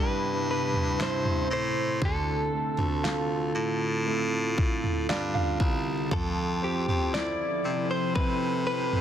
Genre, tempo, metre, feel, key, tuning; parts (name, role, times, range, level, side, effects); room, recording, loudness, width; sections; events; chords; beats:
pop ballad; 59 BPM; 4/4; straight; A4 = 440 Hz
direct-recorded clean electric guitar; melody; 0.0-9.0 s; G4 to D5; -30 LUFS; equal
warm grand piano; accompaniment; 0.0-9.0 s; C3 to F5; -33 LUFS; right 3 dB
glassy FM pad; sustained chords; 0.0-9.0 s; C3 to A4; -33 LUFS; left 1 dB; ensemble chorus, built-in reverb
bright baritone saxophone; bass; 0.0-9.0 s; C2 to C3; -31 LUFS; left 1 dB
pop drum kit; drums; 0.7-9.0 s; kick drum, snare drum, toms; -29 LUFS; equal
little or no reverb; dense, heavily limited modern master; -25 LUFS; side -10 dB against mid
0.0-9.0 A section
grand piano fill 4.6-6.1
0.0 Cmaj7; 2.0 Dm7; 6.1 Fmaj7
0.99 | 2.02 3.04 4.07 5.09 | 6.11 7.14 8.16